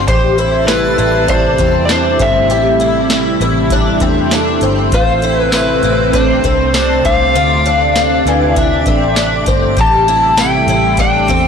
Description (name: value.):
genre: dream pop.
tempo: 99 BPM.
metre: 4/4.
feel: straight.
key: A minor.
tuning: A4 = 441 Hz.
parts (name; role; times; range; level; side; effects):
lush unison pad; sustained chords; 0.0-11.5 s; C3 to E5; -17 LUFS; right 2 dB; chorus, phaser.
picked twelve-string acoustic guitar; arpeggios; 0.0-11.5 s; E3 to G4; -17 LUFS; left 3 dB; ensemble chorus, ping-pong delay.
vintage muted fingered electric bass; bass; 0.0-11.5 s; G1 to E2; -18 LUFS; equal; transformer saturation.
twinkling granular texture; texture; 0.0-11.5 s; A5 to C7; -26 LUFS; left 1 dB; built-in reverb, ping-pong delay.
overdriven slide guitar; melody; 0.1-11.5 s; B4 to A5; -15 LUFS; left 1 dB; ping-pong delay.
booming analog drum machine; drums; 0.1-11.5 s; hi-hat, kick drum, snare drum, tambourine; -17 LUFS; equal; none.
room: light reverb.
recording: blown-out, overdriven recording, overdrive, lossy compression artefacts.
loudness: -10 LUFS.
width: side -6 dB against mid.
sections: 0.1-11.5 A section.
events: none.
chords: 0.1 Am7; 4.9 Fmaj7/A; 7.3 Dm7; 9.8 Am7.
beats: | 0.08 0.68 1.29 1.90 | 2.50 3.11 3.71 4.32 | 4.93 5.53 6.14 6.74 | 7.35 7.96 8.56 9.17 | 9.77 10.38 10.99.